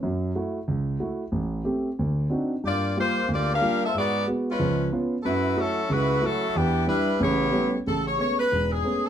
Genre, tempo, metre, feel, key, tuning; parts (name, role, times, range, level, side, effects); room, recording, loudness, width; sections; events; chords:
jazz; 184 BPM; 4/4; swing 64% on 8ths; A4 = 439 Hz
dark concert grand piano; accompaniment; 0.0-9.1 s; E1 to G4; -25 LUFS; right 1 dB
clear saxophone section; melody; 2.7-9.1 s; E3 to F5; -24 LUFS; left 1 dB
wet club reverb, RT60 0.6 s; dark, warm production; -22 LUFS; side -9 dB against mid
0.0-7.9 A section; 7.9-9.1 B section
0.0 F#m7; 1.3 Am7; 2.0 D7b9; 2.6 Gm7; 3.9 G#m7b5; 4.6 C#7; 5.2 F#m7; 6.5 Em7; 7.2 A9; 7.9 Amaj9